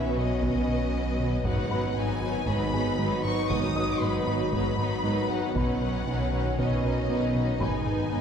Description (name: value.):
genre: cinematic, hybrid orchestral and electronic film score.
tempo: 117 BPM.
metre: 4/4.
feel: straight.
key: G# minor.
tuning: A4 = 439 Hz.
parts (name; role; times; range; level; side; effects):
warm symphonic violin section; melody; 0.0-8.2 s; D#5 to D#6; -34 LUFS; left 5 dB; none.
warm studio violin section; second line; 0.0-8.2 s; C#4 to B4; -35 LUFS; left 2 dB; none.
dark symphonic viola section; accompaniment; 0.0-8.2 s; F#3 to D#4; -34 LUFS; right 1 dB; none.
airy breathy pad; sustained chords; 0.0-8.2 s; D#3 to D#5; -34 LUFS; equal; chorus.
clear trombone section; sustained chords; 0.0-8.2 s; D#3 to D#4; -34 LUFS; right 3 dB; none.
thumb-piano-like synth pluck; arpeggios; 0.0-8.2 s; G#3 to B4; -39 LUFS; right 3 dB; none.
round analog bass; riff; 0.0-8.2 s; G#2 to B3; -33 LUFS; right 1 dB; none.
rich chamber cello section; bass; 0.0-8.2 s; G#2 to B2; -34 LUFS; right 1 dB; none.
rich symphonic double bass section; bass; 0.0-8.2 s; G#1 to B1; -33 LUFS; right 1 dB; none.
felt-muted upright piano; texture; 0.0-8.2 s; G#4 to D#6; -40 LUFS; equal; ping-pong delay.
taiko ensemble; drums; 0.4-8.1 s; none; -36 LUFS; left 1 dB; none.
room: wet scoring stage reverb, RT60 1.8 s.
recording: heard from further back in the room.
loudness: -24 LUFS.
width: side -7 dB against mid.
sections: 0.0-8.2 A section.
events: none.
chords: 0.0 Badd9; 1.5 G#m7; 5.6 Badd9; 7.6 G#m.